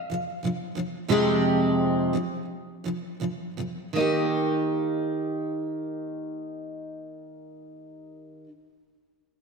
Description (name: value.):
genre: pop.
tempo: 80-92 BPM.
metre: 4/4.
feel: straight.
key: Eb major.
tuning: A4 = 441 Hz.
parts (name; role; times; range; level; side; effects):
nylon-string guitar; melody; 0.0-8.4 s; Eb5 to F5; -35 LUFS; left 2 dB; ping-pong delay.
picked steel-string acoustic guitar; accompaniment; 0.1-8.5 s; F2 to G4; -26 LUFS; right 1 dB; double-tracked left and right.
room: wet lush hall reverb, RT60 1.9 s, small room reverb.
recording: dreamy mix soaked in reverb.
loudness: -24 LUFS.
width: side -4 dB against mid.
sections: 0.0-4.0 A section; 4.0-7.0 B section.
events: slowing down 0.0-4.0.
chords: 0.0 Fmadd9; 4.0 Eb.